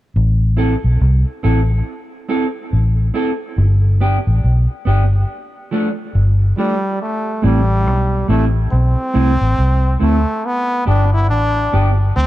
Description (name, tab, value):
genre	roots reggae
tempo	70 BPM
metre	4/4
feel	swing 61% on 16ths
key	A minor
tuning	A4 = 438 Hz
part	vintage muted fingered electric bass	bass	0.2-12.3 s	G1 to D2	-13 LUFS	equal	none
part	mellow electric guitar	accompaniment	0.6-12.0 s	F3 to A4	-21 LUFS	right 2 dB	dub echo
part	brilliant trombone	melody	6.6-12.3 s	G3 to E4	-19 LUFS	equal	dub echo
room	light reverb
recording	dark, warm production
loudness	-13 LUFS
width	side -15 dB against mid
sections	0.1-7.0 A section; 7.0-12.3 B section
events	none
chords	0.1 Am; 3.6 G; 5.3 Dm; 7.0 Am; 10.4 G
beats	| 0.13 0.99 1.85 2.70 | 3.56 4.42 5.28 6.14 | 7.00 7.86 8.71 9.57 | 10.43 11.29 12.15